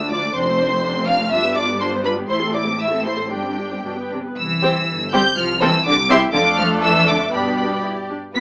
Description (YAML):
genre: quick classical-period movement for string orchestra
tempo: 113-125 BPM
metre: 2/4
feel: rubato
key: C major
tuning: A4 = 440 Hz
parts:
  - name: rich studio violin section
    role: melody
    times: 0.0-8.4 s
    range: G5 to B6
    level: -23 LUFS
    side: equal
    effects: none
  - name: dark studio viola section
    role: accompaniment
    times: 0.0-8.4 s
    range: F3 to B4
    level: -26 LUFS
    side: equal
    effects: none
  - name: rich studio cello section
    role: bass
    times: 0.0-8.4 s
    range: D2 to B3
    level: -27 LUFS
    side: equal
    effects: none
  - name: rich studio double bass section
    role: bass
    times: 0.0-8.4 s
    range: F1 to G2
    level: -31 LUFS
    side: equal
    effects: none
  - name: warm studio violin section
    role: second line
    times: 0.1-8.4 s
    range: F4 to F5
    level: -24 LUFS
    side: equal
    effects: none
room: light reverb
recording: small speaker sound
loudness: -19 LUFS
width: mono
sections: 0.0-4.4 A section; 4.4-8.4 B section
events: none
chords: 0.4 Dm7/F; 1.3 G7; 2.3 Am; 3.3 Gsus4; 3.9 G; 4.4 C; 5.4 F/C; 5.9 C; 6.3 Dm/F; 7.3 G